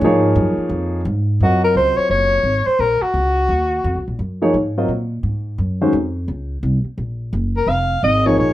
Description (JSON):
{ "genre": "modal jazz", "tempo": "172 BPM", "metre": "4/4", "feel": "swing 63% on 8ths", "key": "Gb lydian", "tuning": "A4 = 440 Hz", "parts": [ { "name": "warm concert grand piano", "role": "accompaniment", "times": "0.0-5.9, 8.3-8.5 s", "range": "Eb3 to Eb5", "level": "-17 LUFS", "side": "equal", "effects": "none" }, { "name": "upright bass", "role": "bass", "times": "0.0-8.5 s", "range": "F1 to Bb2", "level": "-20 LUFS", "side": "equal", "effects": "none" }, { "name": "mellow soprano saxophone", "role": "melody", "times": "1.4-4.1, 7.6-8.5 s", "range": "Gb4 to F5", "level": "-16 LUFS", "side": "left 1 dB", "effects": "none" } ], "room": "moderate studio reverb, RT60 0.6 s", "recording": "none", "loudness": "-16 LUFS", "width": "side -14 dB against mid", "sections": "0.0-1.4 A section; 1.4-8.5 B section", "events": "none", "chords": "0.0 C#; 1.4 Gbmaj7" }